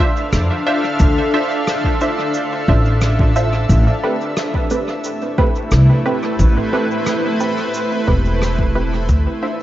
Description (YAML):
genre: ambient dub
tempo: 89 BPM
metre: 4/4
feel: straight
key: A minor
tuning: A4 = 440 Hz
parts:
  - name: granular cloud pad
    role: sustained chords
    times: 0.1-9.6 s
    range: A3 to F5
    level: -20 LUFS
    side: equal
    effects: built-in reverb
  - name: filtered dub chord stab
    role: stabs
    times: 0.0-9.6 s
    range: A3 to E5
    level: -22 LUFS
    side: right 2 dB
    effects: chorus, dub echo
  - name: upright bass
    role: bass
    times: 0.3-9.2 s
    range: E1 to F2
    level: -15 LUFS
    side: equal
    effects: none
  - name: rim click and cabasa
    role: drums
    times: 0.3-9.2 s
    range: none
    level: -28 LUFS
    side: equal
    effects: dub echo
  - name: electronic kick drum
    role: drums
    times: 1.0-9.2 s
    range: none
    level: -17 LUFS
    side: equal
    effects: none
room: moderate plate reverb, RT60 2.3 s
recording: dreamy mix soaked in reverb, vinyl crackle, nothing above 7.6 kHz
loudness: -14 LUFS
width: side -14 dB against mid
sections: 0.0-9.6 A section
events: fade-out 7.3-9.6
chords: 0.0 Dm9; 3.7 Am9; 9.1 Dm9